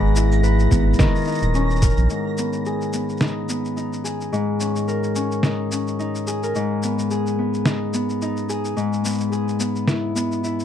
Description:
folktronica; 108 BPM; 4/4; swing 56% on 16ths; G# minor; A4 = 440 Hz
Celtic harp; arpeggios; 0.0-10.6 s; G#2 to B4; -21 LUFS; left 2 dB; low-pass filter, tape echo
round analog bass; bass; 0.0-2.1 s; D#1 to A#1; -18 LUFS; equal
flickering grainy texture; texture; 0.0-2.1 s; A#6; -34 LUFS; right 2 dB; built-in reverb
electronic cabasa and snare drum; drums; 0.2-10.6 s; -26 LUFS; equal; small room ambience
electronic kick drum; drums; 0.7-1.9 s; -20 LUFS; equal; small room ambience
moderate studio reverb, RT60 0.6 s; dark, warm production; -19 LUFS; side -10 dB against mid
0.0-2.1 A section; 2.1-10.6 B section
filter sweep on harp 2.1-10.6
0.0 G#madd9; 1.0 D#5; 2.1 G#m

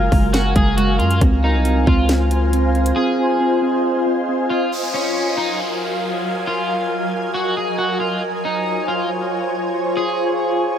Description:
hip hop, atmospheric cloud-rap; 137 BPM; 4/4; half-time; A4 = 440 Hz
electric guitar at the edge of break-up; melody; 0.0-10.8 s; Db4 to Ab4; -23 LUFS; equal; lush chorus, low-pass filter, tape echo
shimmering ambient pad; sustained chords; 0.0-10.8 s; Gb3 to Ab5; -21 LUFS; left 1 dB; chorus, built-in reverb, sidechain pumping
muted felt-like synth keys; arpeggios; 0.0-4.7 s; Ab3 to C4; -22 LUFS; right 5 dB; chorus, low-pass filter, tape echo
long sustained 808-style bass; bass; 0.0-2.9 s; Gb1 to Gb2; -18 LUFS; equal
trap drum kit; drums; 0.1-3.0 s; hi-hat, kick drum, snare drum; -18 LUFS; equal
downlifter; sound effects; 4.7-8.2 s; -29 LUFS; equal
light reverb, digital ambience; -16 LUFS; side -9 dB against mid
0.0-4.7 A section; 4.7-10.8 B section
break 3.0-4.7
0.0 Gbmaj9; 1.2 Dbmaj7; 4.7 Gbmaj9; 8.2 Dbmaj7

